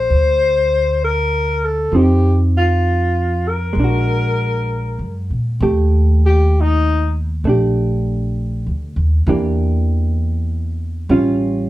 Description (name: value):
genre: jazz ballad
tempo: 66 BPM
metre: 4/4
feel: swing 67% on 8ths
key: unclear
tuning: A4 = 440 Hz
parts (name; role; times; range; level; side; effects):
- mellow alto saxophone; melody; 0.0-7.2 s; Eb4 to C5; -18 LUFS; left 2 dB; none
- hollow-body jazz guitar; accompaniment; 0.0-11.7 s; E3 to C5; -20 LUFS; right 2 dB; none
- upright bass; bass; 0.0-11.7 s; A1 to Bb2; -17 LUFS; equal; none
room: moderate studio reverb, RT60 0.5 s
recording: band playing live in one room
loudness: -14 LUFS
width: side -15 dB against mid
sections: 0.0-5.6 A section; 5.6-11.7 B section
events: alto saxophone solo 5.6-11.7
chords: 0.0 Bbadd9; 1.9 F5; 3.8 Bbaug7; 5.6 Ebmaj7#11; 9.3 Em7b5; 11.1 A7b13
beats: 0.10 1.02 | 1.93 2.84 3.76 4.69 | 5.61 6.54 7.45 8.37 | 9.28 10.19 11.10